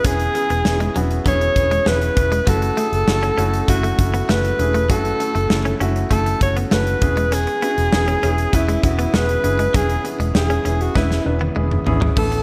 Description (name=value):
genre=1980s-style pop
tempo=99 BPM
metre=4/4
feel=straight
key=unclear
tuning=A4 = 437 Hz
part: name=warm alto saxophone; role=melody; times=0.0-12.4 s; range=E4 to C#5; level=-24 LUFS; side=equal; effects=delay
part: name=warm concert grand piano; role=accompaniment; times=0.0-12.4 s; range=A3 to B4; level=-26 LUFS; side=equal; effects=none
part: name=direct-recorded clean electric guitar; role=riff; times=0.0-12.3 s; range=F#3 to C#4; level=-31 LUFS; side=equal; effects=subtle chorus, delay
part: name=vintage muted fingered electric bass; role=bass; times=0.0-12.4 s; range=E1 to A1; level=-24 LUFS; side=equal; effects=none
part: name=big rock drum kit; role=drums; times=0.0-12.4 s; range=crash cymbal, hi-hat, kick drum, snare drum, toms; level=-24 LUFS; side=equal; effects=none
part: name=ethereal airy pad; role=sustained chords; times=12.2-12.4 s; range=none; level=barely audible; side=none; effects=none
room=light reverb, small room reverb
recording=none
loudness=-18 LUFS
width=mono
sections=0.0-12.2 A section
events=drum fill 11.0-12.2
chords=0.0 C#m7/E; 2.5 F#m7; 7.0 C#m7/E